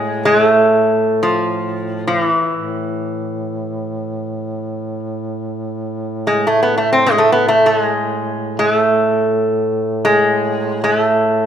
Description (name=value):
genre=caucasian folk, Caucasian lament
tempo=free time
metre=none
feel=none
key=unclear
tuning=A4 = 440 Hz
part: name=metal-body resonator slide guitar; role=melody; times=0.0-11.5 s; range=E3 to C4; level=-14 LUFS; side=equal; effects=none
part: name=mellow duduk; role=drone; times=0.0-11.5 s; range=A2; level=-24 LUFS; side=right 1 dB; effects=none
room=moderate scoring stage reverb, RT60 2.0 s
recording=minimal, uncompressed stereo recording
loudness=-14 LUFS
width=side -9 dB against mid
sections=0.0-11.5 A section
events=none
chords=none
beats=free time